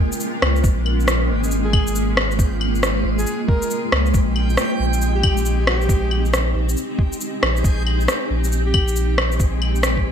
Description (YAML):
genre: future garage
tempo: 137 BPM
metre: 4/4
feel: swing 64% on 16ths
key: unclear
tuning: A4 = 440 Hz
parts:
  - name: granular cloud pad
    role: sustained chords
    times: 0.0-10.1 s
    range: Ab3 to Bb4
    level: -24 LUFS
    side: right 1 dB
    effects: built-in reverb, wide subtle chorus, sidechain pumping
  - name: backwards swelling texture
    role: texture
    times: 0.0-10.1 s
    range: Ab3 to G5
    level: -30 LUFS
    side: right 1 dB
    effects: built-in reverb
  - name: electronic shaker, rim click and claves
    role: drums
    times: 0.1-9.9 s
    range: none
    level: -22 LUFS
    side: left 1 dB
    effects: none
  - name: warm sub bass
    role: bass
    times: 0.4-10.1 s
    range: Ab1 to Db2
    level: -20 LUFS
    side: equal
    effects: sidechain pumping
  - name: electronic kick drum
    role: drums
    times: 0.6-10.0 s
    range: none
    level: -18 LUFS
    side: equal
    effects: none
  - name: warm alto saxophone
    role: melody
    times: 1.6-9.2 s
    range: G4 to Bb4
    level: -29 LUFS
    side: left 1 dB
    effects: ping-pong delay
room: light reverb, digital ambience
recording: bright 1980s-style digital production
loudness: -17 LUFS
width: side -8 dB against mid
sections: 0.0-10.1 A section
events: none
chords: 0.0 Bbm7; 4.1 Cm/Bb